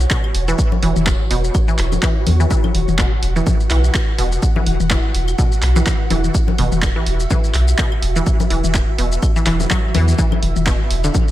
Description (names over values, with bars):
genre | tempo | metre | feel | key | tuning
minimal techno | 125 BPM | 4/4 | swing 56% on 16ths | unclear | A4 = 440 Hz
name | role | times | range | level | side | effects
round analog bass | bass | 0.0-11.1 s | E1 to E2 | -17 LUFS | equal | sidechain pumping
punchy analog drum machine | drums | 0.0-11.3 s | handclaps, hi-hat, shaker | -24 LUFS | equal | none
flickering grainy texture | texture | 0.0-11.3 s | E4 to F#5 | -27 LUFS | equal | built-in reverb, analog chorus, sidechain pumping
resonant blip pluck | riff | 0.1-11.1 s | B2 to F#3 | -23 LUFS | right 1 dB | chorus, sidechain pumping, diffuse ambient delay
electronic kick drum | drums | 0.1-11.3 s | none | -18 LUFS | equal | none
electronic claves, congas and toms | percussion | 0.2-11.3 s | none | -24 LUFS | left 6 dB | ping-pong delay
room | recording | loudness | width
light reverb, digital ambience | none | -14 LUFS | side -14 dB against mid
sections
0.0-11.3 A section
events
none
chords
0.0 E5